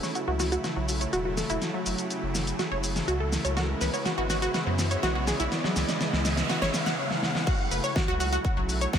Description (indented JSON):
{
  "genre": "progressive house",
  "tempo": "123 BPM",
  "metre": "4/4",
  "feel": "straight",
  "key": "F# minor",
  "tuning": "A4 = 438 Hz",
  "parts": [
    { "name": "supersaw pad", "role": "sustained chords", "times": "0.0-9.0 s", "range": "C#3 to E4", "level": "-32 LUFS", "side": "right 1 dB", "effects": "sidechain pumping" },
    { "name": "wide unison pluck", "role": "arpeggios", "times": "0.0-9.0 s", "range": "F#3 to C#6", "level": "-30 LUFS", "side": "equal", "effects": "sidechain pumping, ping-pong delay" },
    { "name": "big-room dance drum kit", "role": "drums", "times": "0.0-9.0 s", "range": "crash cymbal, hi-hat, shaker, snare drum", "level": "-31 LUFS", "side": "left 1 dB", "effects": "none" },
    { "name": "riser and noise sweep", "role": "sound effects", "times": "0.0-7.5 s", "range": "none", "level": "-36 LUFS", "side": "equal", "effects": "none" },
    { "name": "round analog bass", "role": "bass", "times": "0.3-9.0 s", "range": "E1 to F#2", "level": "-31 LUFS", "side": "equal", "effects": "tube saturation, sidechain pumping" },
    { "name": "electronic kick drum", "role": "drums", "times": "7.5-9.0 s", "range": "none", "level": "-27 LUFS", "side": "equal", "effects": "none" }
  ],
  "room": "light reverb",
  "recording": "none",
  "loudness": "-25 LUFS",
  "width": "side -8 dB against mid",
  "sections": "0.0-7.5 A section; 7.5-9.0 B section",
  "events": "build-up 0.0-7.5; drum fill 0.0-7.0, 7.1-7.5; riser 0.0-7.5; filter sweep on synth pluck 0.0-7.5; noise sweep 5.5-7.5; drop 7.5-9.0",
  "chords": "0.0 F#m7; 3.6 C#m7; 7.5 F#m7"
}